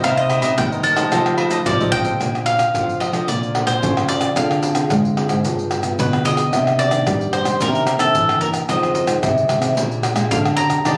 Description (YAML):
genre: samba and choro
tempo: 111 BPM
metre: 4/4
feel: straight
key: Bb major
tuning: A4 = 439 Hz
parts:
  - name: bowl-back mandolin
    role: melody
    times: 0.0-11.0 s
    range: A4 to Bb5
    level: -23 LUFS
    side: equal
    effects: none
  - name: cavaquinho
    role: accompaniment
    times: 0.0-2.2, 10.9-11.0 s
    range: D4 to Eb5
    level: -25 LUFS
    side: equal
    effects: none
  - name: nylon-string guitar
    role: accompaniment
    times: 0.0-11.0 s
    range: F2 to C5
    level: -28 LUFS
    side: equal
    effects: none
  - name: nylon-string guitar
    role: bass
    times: 0.0-11.0 s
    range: G2 to Ab3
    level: -23 LUFS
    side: equal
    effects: none
  - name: agogo bells, egg shaker, surdo, pandeiro and tamborim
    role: percussion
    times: 0.0-11.0 s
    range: none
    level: -24 LUFS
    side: equal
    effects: none
room: moderate small room reverb, RT60 0.5 s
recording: recorded on a phone in the room, club reverb, compression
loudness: -18 LUFS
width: mono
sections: 0.0-2.2 A section; 2.2-11.0 B section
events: drum fill 1.1-2.2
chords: 0.0 Cm7; 1.1 F9; 2.2 Bbmaj9; 4.4 Dm7b5; 5.4 G7b9; 6.5 Cm9; 8.7 Fm7; 9.8 Bb6